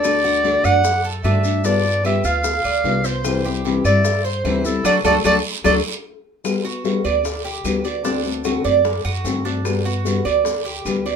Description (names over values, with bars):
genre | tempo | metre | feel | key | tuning
latin, Cuban son and guajira | 150 BPM | 4/4 | straight | G major | A4 = 440 Hz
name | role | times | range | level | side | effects
clear clarinet | melody | 0.0-5.8 s | A4 to F#5 | -19 LUFS | equal | none
nylon-string guitar | accompaniment | 0.0-11.2 s | C3 to F#4 | -22 LUFS | left 5 dB | none
Cuban tres | arpeggios | 0.0-11.2 s | D4 to E5 | -23 LUFS | right 7 dB | none
upright bass | bass | 0.0-11.2 s | C2 to G2 | -24 LUFS | right 1 dB | none
bongos | percussion | 0.0-11.2 s | none | -29 LUFS | left 4 dB | none
claves | percussion | 0.0-11.1 s | none | -33 LUFS | right 5 dB | none
guiro | percussion | 0.0-11.2 s | none | -33 LUFS | right 7 dB | none
maracas | percussion | 0.0-11.2 s | none | -33 LUFS | left 5 dB | none
room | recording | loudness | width
wet studio reverb, RT60 0.5 s | minimal, uncompressed stereo recording | -17 LUFS | side -6 dB against mid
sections
0.0-6.5 A section; 6.5-11.2 B section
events
band accent 4.8-6.5; drum fill 5.8-6.5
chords
0.0 D; 1.6 G7; 3.2 C; 4.8 D; 6.5 Gmaj7; 8.1 D7; 9.7 Gmaj7